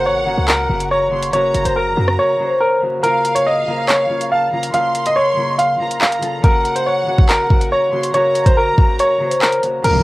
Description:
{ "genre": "hip hop, drill", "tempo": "141 BPM", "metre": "4/4", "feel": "half-time", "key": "unclear", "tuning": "A4 = 440 Hz", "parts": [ { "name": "bright concert grand piano", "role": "melody", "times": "0.0-10.0 s", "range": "Bb4 to F5", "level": "-16 LUFS", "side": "equal", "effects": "low-pass filter" }, { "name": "warm studio violin section", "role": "second line", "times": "0.0-9.4 s", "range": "F5 to C6", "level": "-25 LUFS", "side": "right 1 dB", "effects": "cassette tape, tape echo" }, { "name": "concert harp", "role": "accompaniment", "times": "0.0-10.0 s", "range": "Db3 to C5", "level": "-22 LUFS", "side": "left 2 dB", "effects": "low-pass filter, cassette tape" }, { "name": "short 808-style bass", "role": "bass", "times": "0.0-2.2 s", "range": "Gb1 to Gb2", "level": "-22 LUFS", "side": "equal", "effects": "none" }, { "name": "drill drum kit", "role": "drums", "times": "0.5-9.9 s", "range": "crash cymbal, handclaps, hi-hat, kick drum, rim click", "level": "-15 LUFS", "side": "equal", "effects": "cassette tape" }, { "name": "impact", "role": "sound effects", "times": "9.8-10.0 s", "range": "none", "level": "-15 LUFS", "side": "equal", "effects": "none" } ], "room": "little or no reverb", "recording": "home recording on cassette, vinyl crackle", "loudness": "-13 LUFS", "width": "side -19 dB against mid", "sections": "0.0-3.0 A section; 3.0-9.8 B section", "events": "silent gap 2.2-3.0; break 9.0-9.8; kick muted 9.8; impact 9.8", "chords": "0.0 Gb; 3.0 Bbm; 6.4 Gb" }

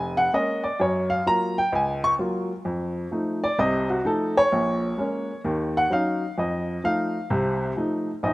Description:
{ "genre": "solo jazz", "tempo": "129 BPM", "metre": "4/4", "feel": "swing 67% on 8ths", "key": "unclear", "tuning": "A4 = 440 Hz", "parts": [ { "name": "warm upright piano", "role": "solo", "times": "0.0-8.3 s", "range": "F1 to Db6", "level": "-22 LUFS", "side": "equal", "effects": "none" } ], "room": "light reverb, small room ambience", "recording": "rough home demo mix", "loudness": "-22 LUFS", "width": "side -19 dB against mid", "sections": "0.0-8.2 A section", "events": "upright piano solo 0.0-8.2", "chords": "0.0 Bbm7; 0.8 Gbmaj7; 2.6 F7; 4.5 Bbm7; 5.4 Ebm7; 6.4 F7" }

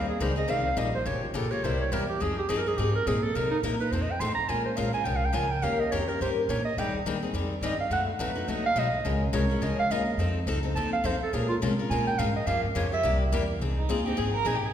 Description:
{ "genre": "acoustic string swing (jazz manouche)", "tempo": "211 BPM", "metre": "4/4", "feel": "swing 58% on 8ths", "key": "F minor", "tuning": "A4 = 440 Hz", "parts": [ { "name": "clear clarinet", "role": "melody", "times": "0.0-13.2 s", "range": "Eb4 to C6", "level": "-29 LUFS", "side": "right 3 dB", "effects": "none" }, { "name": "picked steel-string acoustic guitar", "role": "accompaniment", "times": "0.0-14.6 s", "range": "B2 to Bb4", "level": "-30 LUFS", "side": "left 3 dB", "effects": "none" }, { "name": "upright bass", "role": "bass", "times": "0.0-14.6 s", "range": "G1 to C3", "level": "-30 LUFS", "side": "equal", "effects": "none" }, { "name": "warm violin", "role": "second line", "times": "13.8-14.7 s", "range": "Eb4 to Bb4", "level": "-30 LUFS", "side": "right 4 dB", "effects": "none" } ], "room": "wet recital hall reverb, RT60 1.6 s", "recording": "recorded in a church or concert hall", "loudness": "-25 LUFS", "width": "side -9 dB against mid", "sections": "0.0-4.5 A section; 4.5-13.6 A section; 13.6-14.7 A section", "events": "clarinet solo 0.0-13.6; violin solo 13.6-14.7", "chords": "0.0 Abmaj9; 1.1 Gm7b5; 1.6 C7; 2.2 Fm7; 3.4 Cm7b5; 3.9 F7; 4.5 Bbm7; 5.6 Eb7; 6.8 Abmaj7; 7.9 B7; 9.1 Db6; 10.2 F7; 11.3 Bbm9; 12.5 Gm7b5; 13.0 C7; 13.6 Fm7" }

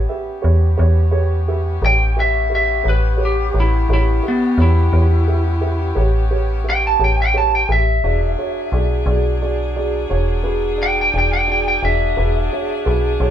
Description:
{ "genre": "blues", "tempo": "58 BPM (dotted quarters)", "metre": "12/8", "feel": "straight", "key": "unclear", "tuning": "A4 = 440 Hz", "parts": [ { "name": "bright saxophone section", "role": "sustained chords", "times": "0.0-13.3 s", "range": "F#3 to G#4", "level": "-28 LUFS", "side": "left 2 dB", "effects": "none" }, { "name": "metallic FM bass", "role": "bass", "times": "0.0-13.3 s", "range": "E1 to E2", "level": "-17 LUFS", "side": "equal", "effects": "none" }, { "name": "dark concert grand piano", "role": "accompaniment", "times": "0.1-13.3 s", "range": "F#4 to E5", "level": "-23 LUFS", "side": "right 3 dB", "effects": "none" }, { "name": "lightly driven lead guitar", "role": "melody", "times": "1.9-13.3 s", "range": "B3 to A5", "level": "-18 LUFS", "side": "equal", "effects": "none" } ], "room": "moderate studio reverb, RT60 0.8 s", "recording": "band playing live in one room", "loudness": "-14 LUFS", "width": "side -10 dB against mid", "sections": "0.0-13.3 A section", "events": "lead electric guitar solo 0.0-13.3", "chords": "0.0 A9; 8.0 E9" }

